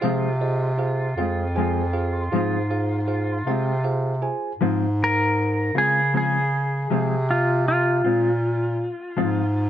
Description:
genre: slow blues.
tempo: 52 BPM (dotted quarters).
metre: 12/8.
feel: straight.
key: F minor.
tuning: A4 = 440 Hz.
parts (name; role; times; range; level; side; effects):
clean lap steel guitar; melody; 0.0-9.7 s; F4 to Bb4; -24 LUFS; equal; none.
bell-like tine electric piano; accompaniment; 0.0-4.5 s; F4 to Ab5; -28 LUFS; right 4 dB; none.
mellow electric guitar; accompaniment; 0.0-9.4 s; F3 to F4; -25 LUFS; left 4 dB; tremolo.
warm bass clarinet; bass; 0.0-9.7 s; F2 to Db3; -23 LUFS; equal; none.
room: light reverb.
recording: dark, warm production.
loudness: -20 LUFS.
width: side -11 dB against mid.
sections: 0.0-4.6 A section; 4.6-9.7 B section.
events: electric slide guitar solo 4.6-9.7.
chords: 0.0 Fm.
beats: | 0.03 1.18 2.33 3.47 | 4.61 5.76 6.90 8.05 | 9.19.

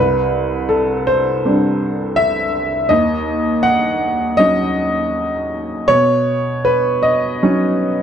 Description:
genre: neoclassical minimalist piano.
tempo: 80 BPM.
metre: 4/4.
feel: rubato.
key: unclear.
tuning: A4 = 441 Hz.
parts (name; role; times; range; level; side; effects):
warm upright piano; solo; 0.0-8.0 s; C2 to Gb5; -14 LUFS; equal; none.
room: moderate studio ambience, RT60 0.5 s.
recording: dark, warm production.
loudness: -14 LUFS.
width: side -8 dB against mid.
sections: 0.0-8.0 A section.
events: none.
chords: 0.0 Csus2; 2.9 Ebm7; 5.9 Badd9.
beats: 0.70 1.45 2.17 | 2.90 3.65 4.40 5.14 | 5.89 6.65 7.42.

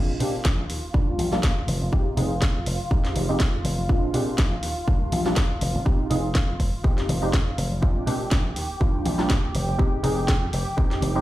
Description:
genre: filtered disco house.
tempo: 122 BPM.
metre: 4/4.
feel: swing 55% on 16ths.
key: F dorian.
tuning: A4 = 441 Hz.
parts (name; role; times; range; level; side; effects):
funky polysynth comp; accompaniment; 0.0-11.2 s; G3 to Ab4; -28 LUFS; equal; chorus, phaser, sidechain pumping, low-pass filter.
rich symphonic string section; sustained chords; 0.0-11.2 s; F4 to G5; -34 LUFS; right 1 dB; sidechain pumping, low-pass filter.
dry thumbed slap bass; bass; 0.0-11.2 s; F1 to Bb2; -28 LUFS; equal; sidechain pumping, low-pass filter.
maracas and congas; percussion; 0.1-11.2 s; none; -31 LUFS; left 1 dB; none.
house drum kit; drums; 0.2-11.1 s; hi-hat, snare drum; -30 LUFS; equal; sidechain pumping on hats, sidechain pumping on cymbals.
electronic kick drum; drums; 0.5-10.9 s; none; -22 LUFS; equal; none.
room: light reverb, digital ambience.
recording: played on a big sound system in a bare room, large studio reverb.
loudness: -21 LUFS.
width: side -15 dB against mid.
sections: 0.0-11.2 A section.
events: filter sweep 0.0-11.2.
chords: 0.0 Bb9; 0.7 Ebmaj7; 1.7 Fm7; 3.9 Bb9; 4.6 Ebmaj7; 5.6 Fm7; 7.8 Bb9; 8.6 Ebmaj7; 9.5 Fm7.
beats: 0.45 0.94 1.43 | 1.93 2.42 2.91 3.40 | 3.89 4.38 4.88 5.37 | 5.86 6.35 6.84 7.33 | 7.83 8.32 8.81 9.30 | 9.79 10.29 10.78.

